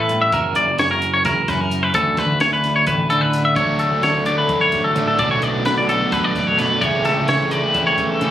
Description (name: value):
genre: math rock and midwest emo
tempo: 259 BPM (eighths)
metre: 7/8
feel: straight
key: D major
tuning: A4 = 443 Hz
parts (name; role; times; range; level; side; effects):
- twelve-string electric guitar; accompaniment; 0.0-8.3 s; D2 to G4; -25 LUFS; right 4 dB; none
- twangy electric guitar; arpeggios; 0.0-8.3 s; A4 to E5; -18 LUFS; left 2 dB; none
- fuzz picked electric bass; bass; 0.0-8.3 s; F#1 to D3; -24 LUFS; equal; overdrive
- compact cocktail drum kit; drums; 0.1-8.3 s; hi-hat, kick drum, snare drum; -29 LUFS; equal; none
- crunchy overdriven guitar; riff; 3.5-8.3 s; B2 to G4; -21 LUFS; right 1 dB; none
room: little or no reverb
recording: recorded on a phone in the room, club reverb, compression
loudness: -15 LUFS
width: side -11 dB against mid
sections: 0.0-3.6 A section; 3.6-8.3 B section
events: none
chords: 0.3 F#7; 1.9 Dmaj9; 3.6 Dmaj7; 5.2 Bm11; 6.8 A7/C#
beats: 0.10 | 0.33 0.56 0.79 1.02 1.25 1.48 1.72 | 1.95 2.18 2.41 2.64 2.87 3.10 3.33 | 3.57 3.80 4.03 4.26 4.49 4.73 4.96 | 5.19 5.42 5.65 5.89 6.12 6.35 6.58 | 6.82 7.05 7.28 7.51 7.74 7.98 8.21